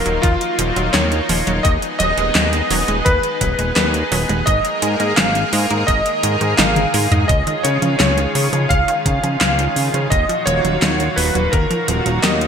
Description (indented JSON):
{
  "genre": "synthwave",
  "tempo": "85 BPM",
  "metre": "4/4",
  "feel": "straight",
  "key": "Eb minor",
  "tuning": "A4 = 440 Hz",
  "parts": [
    { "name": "clear electric grand piano", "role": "melody", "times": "0.0-12.5 s", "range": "F4 to F5", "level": "-20 LUFS", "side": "equal", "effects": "ensemble chorus, ping-pong delay" },
    { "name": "lush unison pad", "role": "sustained chords", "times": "0.0-12.5 s", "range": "Bb2 to Bb4", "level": "-22 LUFS", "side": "equal", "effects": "chorus, sidechain pumping" },
    { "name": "wide unison pluck", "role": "arpeggios", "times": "0.1-12.4 s", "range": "Db3 to Eb5", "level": "-26 LUFS", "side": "right 2 dB", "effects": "cassette tape, ping-pong delay" },
    { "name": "fat analog bass", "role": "bass", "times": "0.1-12.5 s", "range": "Eb1 to Db3", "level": "-20 LUFS", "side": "equal", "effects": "none" },
    { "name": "pop drum kit", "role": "drums", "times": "0.1-12.5 s", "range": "handclaps, hi-hat, snare drum, toms", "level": "-19 LUFS", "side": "equal", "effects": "overdrive, gated reverb" },
    { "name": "electronic kick drum", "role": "drums", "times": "0.2-11.7 s", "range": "none", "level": "-19 LUFS", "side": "equal", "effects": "none" }
  ],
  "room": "moderate plate reverb, RT60 2.2 s",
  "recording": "bright 1980s-style digital production",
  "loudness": "-14 LUFS",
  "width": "side -7 dB against mid",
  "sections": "0.0-12.5 A section",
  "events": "drum fill 6.6-7.3",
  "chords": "0.0 Ebmadd9; 1.6 B6/D#; 4.5 Absus2; 7.3 Dbadd9; 10.1 Ebmadd9",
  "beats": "0.23 0.94 | 1.65 2.35 3.06 3.76 | 4.47 5.18 5.88 6.59 | 7.29 8.00 8.71 9.41 | 10.12 10.82 11.53 12.23"
}